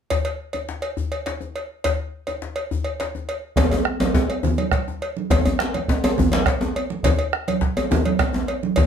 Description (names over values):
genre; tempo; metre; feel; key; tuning
west african traditional, West African drum ensemble; 138 BPM (dotted quarters); 12/8; straight; none; none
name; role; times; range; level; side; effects
cowbell; percussion; 0.1-8.9 s; none; -27 LUFS; equal; none
djembe; percussion; 0.1-8.9 s; none; -26 LUFS; left 4 dB; none
bombo; percussion; 3.6-8.9 s; none; -22 LUFS; right 2 dB; none
congas; percussion; 3.6-8.9 s; none; -26 LUFS; right 7 dB; none
djembe; percussion; 3.6-8.5 s; none; -22 LUFS; equal; none
room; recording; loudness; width
moderate studio reverb, RT60 0.6 s; none; -20 LUFS; side -8 dB against mid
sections
0.1-3.6 A section; 3.6-8.9 B section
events
none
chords
none